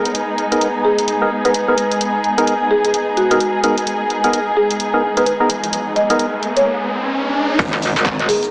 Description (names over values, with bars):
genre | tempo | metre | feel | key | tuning
bass house | 129 BPM | 4/4 | swing 60% on 16ths | G# minor | A4 = 441 Hz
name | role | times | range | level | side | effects
dark symphonic string section | sustained chords | 0.0-8.5 s | G#3 to A#4 | -19 LUFS | equal | sidechain pumping, low-pass filter
percussive organ stab | stabs | 0.0-6.3 s | B3 to A#4 | -20 LUFS | equal | chorus, sidechain pumping, dub echo
house drum kit | drums | 0.1-8.5 s | crash cymbal, handclaps, hi-hat, shaker | -23 LUFS | equal | overdrive
buzzing marimba with medium mallets | melody | 0.8-8.4 s | F#4 to D#5 | -19 LUFS | equal | dub echo
riser and impact | sound effects | 5.1-8.5 s | none | -23 LUFS | equal | none
metallic wobble bass | bass | 7.6-8.3 s | G#1 | -17 LUFS | equal | distortion, chorus, tube saturation, sidechain pumping
electronic kick drum | drums | 7.6-8.2 s | none | -23 LUFS | equal | overdrive
room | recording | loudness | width
moderate lush hall reverb, RT60 1.6 s | small speaker sound | -14 LUFS | side -32 dB against mid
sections
0.0-7.6 A section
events
riser 5.1-7.6; impact 7.6-8.5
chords
0.0 G#madd9